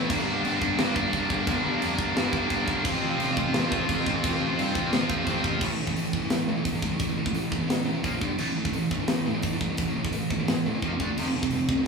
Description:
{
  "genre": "heavy metal",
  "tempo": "173 BPM",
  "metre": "4/4",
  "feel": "straight",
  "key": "A phrygian",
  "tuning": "A4 = 438 Hz",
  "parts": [
    { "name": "high-gain distorted guitar", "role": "riff", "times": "0.0-11.9 s", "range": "F2 to F4", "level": "-27 LUFS", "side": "right 1 dB", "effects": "distortion" },
    { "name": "high-gain distorted guitar", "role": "riff", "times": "0.0-5.6 s", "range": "F2 to A3", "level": "-30 LUFS", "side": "equal", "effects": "distortion" },
    { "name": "fuzz fingered electric bass", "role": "bass", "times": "0.0-11.8 s", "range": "F1 to A2", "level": "-32 LUFS", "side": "left 1 dB", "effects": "overdrive" },
    { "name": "tight metal drum kit", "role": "drums", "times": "0.1-11.8 s", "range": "china cymbal, crash cymbal, hi-hat, kick drum, snare drum, toms", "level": "-29 LUFS", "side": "equal", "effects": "none" }
  ],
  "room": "moderate large studio reverb, RT60 1.2 s",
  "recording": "band playing live in one room, small room ambience",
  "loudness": "-24 LUFS",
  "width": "side -4 dB against mid",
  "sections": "0.0-5.6 A section; 5.6-11.9 B section",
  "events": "drum fill 10.8-11.2",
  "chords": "0.1 Gm; 2.9 F/A; 5.6 A5; 8.1 Bb5; 8.2 G5; 8.4 A5; 10.8 F5; 11.0 D5; 11.2 F5"
}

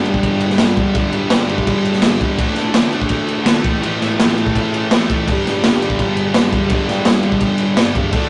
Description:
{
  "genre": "garage rock duo or trio",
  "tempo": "167 BPM",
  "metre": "4/4",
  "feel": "straight",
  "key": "unclear",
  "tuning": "A4 = 440 Hz",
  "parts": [
    { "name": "fuzz guitar", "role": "riff", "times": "0.0-8.3 s", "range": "G2 to D4", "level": "-20 LUFS", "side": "equal", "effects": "distortion" },
    { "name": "crunchy breakbeat drum kit", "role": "drums", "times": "0.1-8.2 s", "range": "crash cymbal, kick drum, snare drum", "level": "-18 LUFS", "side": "equal", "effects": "none" }
  ],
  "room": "light reverb",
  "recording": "rough rehearsal-room recording, tube saturation, nothing above 10.7 kHz",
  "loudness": "-16 LUFS",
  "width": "mono",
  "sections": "0.0-8.3 A section",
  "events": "none",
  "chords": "0.0 G5; 2.4 D5; 3.6 A5; 5.3 G5"
}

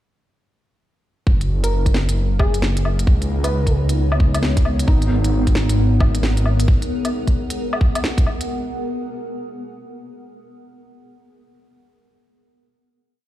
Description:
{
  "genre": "future garage",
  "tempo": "133 BPM",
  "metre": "4/4",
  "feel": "swing 63% on 16ths",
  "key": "G# dorian",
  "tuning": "A4 = 440 Hz",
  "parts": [
    { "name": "granular cloud pad", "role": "sustained chords", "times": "1.8-8.5 s", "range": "A#3 to F#5", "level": "-26 LUFS", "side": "equal", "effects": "built-in reverb, sidechain pumping" },
    { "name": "swelling detuned saw bass", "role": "bass", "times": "1.3-6.7 s", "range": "F#1 to C#2", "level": "-18 LUFS", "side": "equal", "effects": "none" },
    { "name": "electronic kick drum", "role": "drums", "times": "1.3-8.2 s", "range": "none", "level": "-16 LUFS", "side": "equal", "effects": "studio reverb" },
    { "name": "organic electronic drum kit", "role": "drums", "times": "1.4-8.5 s", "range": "hi-hat, snare drum, woodblock", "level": "-26 LUFS", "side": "left 1 dB", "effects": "studio reverb" },
    { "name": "soft struck synth lead", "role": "melody", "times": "1.6-3.7 s", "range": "G#4 to B4", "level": "-30 LUFS", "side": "left 1 dB", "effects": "chorus, dub echo" },
    { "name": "felt-muted upright piano", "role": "accompaniment", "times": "4.9-6.7 s", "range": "D#4", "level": "-30 LUFS", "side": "left 2 dB", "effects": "sidechain pumping, dub echo" }
  ],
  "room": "digital ambience",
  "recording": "played on a big sound system in a bare room, stone room reverb",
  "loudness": "-16 LUFS",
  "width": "side -14 dB against mid",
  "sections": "1.3-8.5 groove",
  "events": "none",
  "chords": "1.3 F#6; 3.1 C#9; 4.9 G#m9"
}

